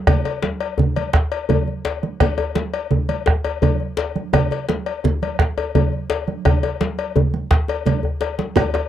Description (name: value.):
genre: west african traditional, West African drum ensemble.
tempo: 113 BPM (dotted quarters).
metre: 12/8.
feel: straight.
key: none.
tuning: none.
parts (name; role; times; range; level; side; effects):
bombo; percussion; 0.1-8.7 s; none; -18 LUFS; right 2 dB; none.
congas; percussion; 0.1-8.8 s; none; -22 LUFS; right 5 dB; none.
cowbell; percussion; 0.1-8.9 s; none; -25 LUFS; left 9 dB; none.
djembe; percussion; 0.1-8.9 s; none; -22 LUFS; left 3 dB; none.
djembe; percussion; 8.6-8.9 s; none; -24 LUFS; right 3 dB; none.
shekere; percussion; 8.6-8.7 s; none; -29 LUFS; left 2 dB; none.
room: light reverb.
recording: dry, close 1970s-style studio recording.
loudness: -18 LUFS.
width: side -11 dB against mid.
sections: 0.0-8.6 A section.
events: drum fill 7.9-8.6.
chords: none.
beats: | 0.07 0.61 1.14 1.68 | 2.21 2.74 3.27 3.80 | 4.33 4.86 5.39 5.92 | 6.45 6.98 7.51 8.04 | 8.56.